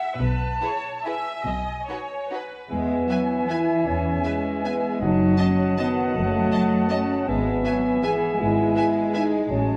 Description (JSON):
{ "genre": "classical, orchestral ballroom waltz", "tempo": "136-174 BPM", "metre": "3/4", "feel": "rubato", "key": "E major", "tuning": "A4 = 443 Hz", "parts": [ { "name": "bright small flute group", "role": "second line", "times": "0.0-9.8 s", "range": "F#5 to A5", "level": "-34 LUFS", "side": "equal", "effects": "none" }, { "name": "clear symphonic viola section", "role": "accompaniment", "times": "0.0-9.2 s", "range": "B4 to E5", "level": "-38 LUFS", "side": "equal", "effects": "none" }, { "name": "rich studio double bass section", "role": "bass", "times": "0.2-9.8 s", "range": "F#1 to E2", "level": "-32 LUFS", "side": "equal", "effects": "none" }, { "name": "rich symphonic cello section", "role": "bass", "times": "0.2-9.8 s", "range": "B2 to A3", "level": "-29 LUFS", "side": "equal", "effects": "none" }, { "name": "warm symphonic violin section", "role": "melody", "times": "0.6-9.2 s", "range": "B4 to A5", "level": "-40 LUFS", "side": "equal", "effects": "none" }, { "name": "warm symphonic violin section", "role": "second line", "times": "0.6-9.2 s", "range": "D#4 to E5", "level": "-39 LUFS", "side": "equal", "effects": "none" }, { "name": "bright clarinet", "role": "second line", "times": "2.7-9.8 s", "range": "C#5 to E5", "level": "-37 LUFS", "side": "equal", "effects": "none" }, { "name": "dark cor anglais", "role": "second line", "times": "2.7-9.8 s", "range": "F#5 to G#5", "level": "-35 LUFS", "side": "equal", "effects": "none" }, { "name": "dark bassoon", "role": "accompaniment", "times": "2.7-9.8 s", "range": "E3 to B3", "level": "-33 LUFS", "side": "equal", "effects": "none" }, { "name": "warm French horn section", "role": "sustained chords", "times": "2.7-9.8 s", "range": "A3 to G#4", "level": "-26 LUFS", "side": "equal", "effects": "none" }, { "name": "timpani", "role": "percussion", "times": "5.0-5.5 s", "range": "F#2", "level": "-35 LUFS", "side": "equal", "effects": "none" } ], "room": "wet recital hall reverb, RT60 1.7 s", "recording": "none", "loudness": "-23 LUFS", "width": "mono", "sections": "0.0-2.7 A section; 2.7-9.8 B section", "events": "none", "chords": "0.2 E/B; 1.5 B; 2.7 E; 5.0 D#dim/F#; 7.3 E/G#" }